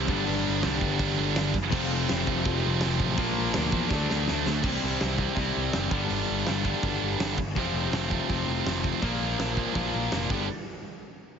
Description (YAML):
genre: punk rock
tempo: 164 BPM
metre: 4/4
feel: straight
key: unclear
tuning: A4 = 440 Hz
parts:
  - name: cranked stack guitar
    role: riff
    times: 0.0-10.5 s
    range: F2 to D4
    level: -31 LUFS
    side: left 12 dB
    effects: overdrive
  - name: thick fuzz guitar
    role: riff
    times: 0.0-4.6 s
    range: F2 to D4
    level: -32 LUFS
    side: equal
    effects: distortion
  - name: tight distorted guitar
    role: riff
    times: 0.0-10.5 s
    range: F2 to G4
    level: -30 LUFS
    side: right 15 dB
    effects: distortion
  - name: modern bright picked electric bass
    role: bass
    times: 0.0-10.5 s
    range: F1 to E2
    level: -32 LUFS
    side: right 1 dB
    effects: none
  - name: big rock drum kit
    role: drums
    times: 0.1-10.4 s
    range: crash cymbal, hi-hat, kick drum, snare drum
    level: -31 LUFS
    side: right 1 dB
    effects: none
room: little or no reverb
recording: heavily compressed radio sound, nothing above 7.6 kHz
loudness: -24 LUFS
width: side -7 dB against mid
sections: 0.0-4.6 A section; 4.6-10.5 B section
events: drum fill 3.9-4.6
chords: 0.1 G; 1.7 F; 3.2 Bb; 3.9 D; 4.6 C; 5.9 G; 7.6 F; 9.0 Bb; 10.3 G; 10.5 N.C.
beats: | 0.26 0.63 0.99 1.35 | 1.72 2.08 2.45 2.81 | 3.18 3.54 3.90 4.27 | 4.63 5.00 5.36 5.73 | 6.09 6.46 6.83 7.19 | 7.56 7.92 8.29 8.66 | 9.02 9.39 9.76 10.12